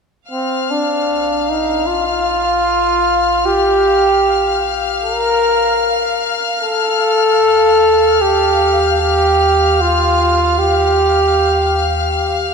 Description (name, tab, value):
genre	ambient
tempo	free time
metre	none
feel	none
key	unclear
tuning	A4 = 440 Hz
part	mellow flugelhorn	melody	0.3-12.5 s	C4 to Bb4	-13 LUFS	equal	ping-pong delay
part	deep rumbling drone	bass	1.2-12.5 s	Bb1 to Eb2	-24 LUFS	equal	built-in reverb
part	rich studio violin section	texture	0.3-12.5 s	F5 to F6	-19 LUFS	left 4 dB	none
room	wet plate reverb, RT60 2.5 s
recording	dreamy mix soaked in reverb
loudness	-12 LUFS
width	side -5 dB against mid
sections	0.3-12.5 A section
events	fade-in on synth drone 0.3-12.5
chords	0.3 Bb5; 6.6 Ebadd9